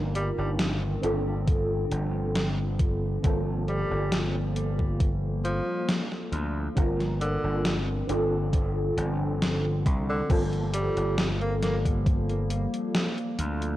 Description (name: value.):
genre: vaporwave.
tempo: 68 BPM.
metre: 4/4.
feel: straight.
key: G minor.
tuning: A4 = 440 Hz.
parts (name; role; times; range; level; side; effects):
mellow FM electric piano; accompaniment; 0.0-13.8 s; Bb3 to Bb4; -32 LUFS; equal; ensemble chorus, tape echo.
warbly tape-like pad; sustained chords; 0.0-13.8 s; D3 to C4; -36 LUFS; left 1 dB; chorus, built-in reverb.
gritty slap bass; bass; 0.0-13.7 s; G1 to D2; -28 LUFS; equal; overdrive.
clear tenor saxophone; melody; 0.2-11.8 s; D3 to Bb3; -34 LUFS; equal; tape echo.
gated 80s digital drum machine; drums; 0.2-13.8 s; crash cymbal, hi-hat, snare drum; -30 LUFS; equal; gated reverb, gated reverb snare, overdrive.
electronic kick drum; drums; 1.5-12.2 s; none; -24 LUFS; equal; overdrive.
room: light reverb, digital ambience.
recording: worn, warbling old tape, cassette tape, warbly pitch drift.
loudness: -24 LUFS.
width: side -14 dB against mid.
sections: 0.0-10.3 A section; 10.3-13.8 B section.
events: none.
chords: 0.0 Cm11/G; 1.0 Dm7/G; 3.2 Gm11; 6.8 C9sus4/G; 8.1 Dm7/G; 10.3 Gm11.